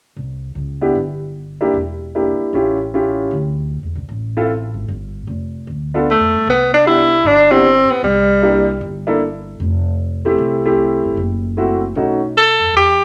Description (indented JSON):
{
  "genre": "jazz, small-group swing and bop",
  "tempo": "153 BPM",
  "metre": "4/4",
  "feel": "swing 64% on 8ths",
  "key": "C major",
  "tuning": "A4 = 444 Hz",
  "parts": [
    { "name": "upright bass", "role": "bass", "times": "0.2-13.0 s", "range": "E1 to G2", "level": "-26 LUFS", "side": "equal", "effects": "none" },
    { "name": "warm concert grand piano", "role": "accompaniment", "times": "0.8-12.2 s", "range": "A3 to A4", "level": "-19 LUFS", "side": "equal", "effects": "none" },
    { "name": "breathy tenor saxophone", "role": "melody", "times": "6.1-8.8, 12.4-13.0 s", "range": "G3 to A4", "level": "-13 LUFS", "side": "equal", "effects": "none" }
  ],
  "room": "moderate large studio reverb, RT60 1.0 s",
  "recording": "none",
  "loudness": "-16 LUFS",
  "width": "mono",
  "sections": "0.2-6.5 A section; 6.5-13.0 B section",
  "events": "none",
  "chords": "0.2 Cadd9; 1.7 Em7b5; 2.5 A7b13; 3.3 D7sus2; 4.9 G7sus2; 6.5 Cmaj7; 8.0 C7; 9.6 Fmaj7; 11.2 F#m7b5; 12.0 B7"
}